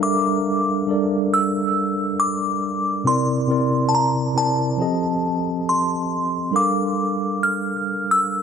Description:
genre	R&B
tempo	69 BPM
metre	4/4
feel	swing 58% on 16ths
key	G dorian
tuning	A4 = 440 Hz
part	glassy synth bell	melody	0.0-8.4 s	A5 to F6	-22 LUFS	left 1 dB	chorus, digital delay
part	mellow tine electric piano	accompaniment	0.0-8.4 s	C3 to Bb5	-21 LUFS	right 1 dB	medium stereo tremolo
room	moderate lush hall reverb, RT60 3.3 s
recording	dark, warm production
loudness	-18 LUFS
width	side -7 dB against mid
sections	0.0-6.5 A section; 6.5-8.4 B section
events	none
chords	0.0 Gm9; 3.1 C7; 4.8 F7; 6.5 Gm9

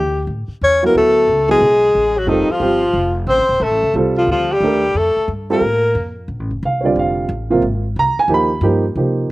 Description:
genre	jazz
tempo	179 BPM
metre	4/4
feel	swing 65% on 8ths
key	Bb major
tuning	A4 = 440 Hz
part	breathy alto saxophone	melody	0.0-6.1 s	Eb4 to Db5	-15 LUFS	left 2 dB	none
part	upright bass	bass	0.0-9.3 s	Eb1 to C3	-22 LUFS	equal	none
part	mellow tenor saxophone	second line	0.6-6.1 s	Eb3 to Db4	-23 LUFS	right 2 dB	slapback echo
part	dark upright piano	accompaniment	0.8-9.3 s	C3 to B5	-17 LUFS	right 2 dB	slapback echo
room	light reverb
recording	recorded outdoors, with no room sound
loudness	-13 LUFS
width	side -18 dB against mid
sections	0.0-6.3 A section; 6.3-9.3 B section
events	none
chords	0.3 A5; 0.9 Dmaj7; 2.3 F9; 3.6 Bbmaj9; 7.6 Abadd9; 8.3 G7alt

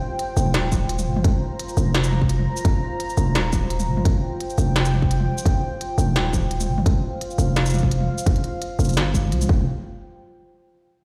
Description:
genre	half-time drum and bass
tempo	171 BPM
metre	4/4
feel	swing 54% on 16ths, half-time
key	unclear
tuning	A4 = 441 Hz
part	dark analog pad	sustained chords	0.0-9.7 s	F4 to Bb5	-32 LUFS	equal	chorus, vintage 12-bit sampler grit, sidechain pumping
part	industrial drum kit	drums	0.2-9.5 s	hi-hat, shaker, snare drum, toms	-29 LUFS	equal	none
part	growling 808-style bass	bass	0.4-9.7 s	Eb1 to C2	-23 LUFS	equal	none
part	electronic kick drum	drums	0.7-9.6 s	none	-24 LUFS	equal	distortion
room	light reverb, digital ambience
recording	played on a big sound system in a bare room, stone room reverb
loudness	-21 LUFS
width	mono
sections	0.0-9.7 A section; 9.7-11.0 B section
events	drop 0.0-9.7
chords	0.0 Fsus2; 9.7 N.C.

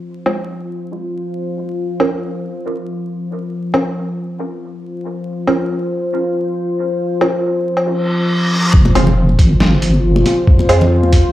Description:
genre	deep dubstep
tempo	138 BPM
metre	4/4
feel	swing 55% on 16ths, half-time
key	F minor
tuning	A4 = 440 Hz
part	deep dark ambient pad	sustained chords	0.0-11.3 s	F4 to C5	-19 LUFS	left 1 dB	chorus, built-in reverb
part	filtered dub chord stab	stabs	0.3-10.9 s	Ab3 to Bb4	-20 LUFS	right 1 dB	phaser, wide subtle chorus, dub echo
part	trip hop sampler-style drum kit	drums	0.3-11.2 s	hi-hat, snare drum, woodblock	-20 LUFS	equal	low-pass filter on perc, low-pass filter on hats, low-pass filter on snare, low-pass filter on room
part	reverse cymbal	sound effects	8.0-8.7 s	none	-20 LUFS	equal	none
part	deep soft wobble bass	bass	8.7-11.3 s	F1 to F2	-13 LUFS	equal	chorus
part	electronic kick drum	drums	8.7-11.2 s	none	-11 LUFS	equal	none
part	congas	percussion	8.8-11.1 s	none	-21 LUFS	left 1 dB	dub echo
room	wet spring reverb, RT60 1.5 s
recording	played on a big sound system in a bare room, large studio reverb, vinyl crackle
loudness	-13 LUFS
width	side -14 dB against mid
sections	0.0-8.7 A section; 8.7-11.3 B section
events	reverse cymbal 8.0-8.7; drop 8.7-11.3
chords	0.0 F5; 1.8 N.C.; 8.7 Fm

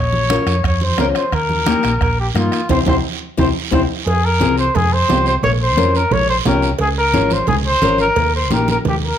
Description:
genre	latin, cumbia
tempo	176 BPM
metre	4/4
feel	straight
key	F minor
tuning	A4 = 440 Hz
part	breathy trumpet	melody	0.0-9.2 s	F4 to Db5	-18 LUFS	left 1 dB	none
part	hollow-body short-scale fingered electric bass	bass	0.0-9.1 s	Ab1 to G2	-19 LUFS	equal	none
part	congas	percussion	0.1-9.0 s	none	-24 LUFS	right 3 dB	none
part	nylon-string guitar	accompaniment	0.3-8.7 s	Bb3 to C5	-20 LUFS	left 6 dB	none
part	bombo	percussion	0.3-3.8 s	none	-22 LUFS	right 2 dB	none
part	guiro	percussion	0.3-9.2 s	none	-28 LUFS	right 10 dB	none
part	timbales and cowbell	percussion	0.3-9.0 s	none	-26 LUFS	right 6 dB	none
room	light reverb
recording	none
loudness	-14 LUFS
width	side -9 dB against mid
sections	0.0-4.1 A section; 4.1-9.2 B section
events	drum fill 2.7-4.1; band accent 2.7-4.1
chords	0.0 Bbm; 1.3 Eb; 2.7 C; 4.1 Fm; 5.4 Bbm; 6.8 Db; 8.2 Eb

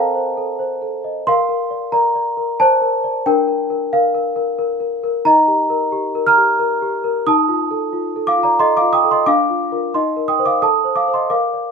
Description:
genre	classical, lullaby for celesta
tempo	90 BPM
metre	3/4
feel	straight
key	Bb major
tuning	A4 = 440 Hz
part	celesta	solo	0.0-11.7 s	C4 to F6	-14 LUFS	equal	none
room	light reverb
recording	minimal, uncompressed stereo recording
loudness	-14 LUFS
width	side -5 dB against mid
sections	0.0-11.7 A section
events	none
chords	0.0 F7/C; 1.3 Bb; 3.3 Bb/D; 5.2 Eb; 7.3 F7/Eb; 9.3 Bb/D; 9.9 Cm7/Eb; 10.6 F7/A

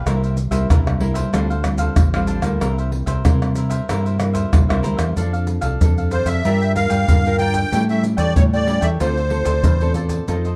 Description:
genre	samba and choro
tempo	94 BPM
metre	4/4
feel	straight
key	F major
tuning	A4 = 440 Hz
part	cavaquinho	accompaniment	0.0-10.6 s	D4 to G5	-31 LUFS	equal	none
part	nylon-string guitar	accompaniment	0.0-10.6 s	G2 to Bb4	-27 LUFS	equal	none
part	deep dub fingered electric bass	bass	0.1-10.6 s	A1 to C3	-23 LUFS	equal	none
part	maracas, surdo, pandeiro and tamborim	percussion	0.1-10.6 s	none	-22 LUFS	equal	none
part	musette accordion	melody	6.1-9.9 s	C5 to G5	-24 LUFS	equal	none
room	moderate studio reverb, RT60 0.8 s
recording	dark, warm production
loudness	-18 LUFS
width	mono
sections	0.0-5.2 A section; 5.2-10.6 B section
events	none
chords	0.1 C7; 1.3 Dm11; 2.6 C7; 5.2 F6; 6.4 Gm7; 7.7 A7; 9.0 Dm7

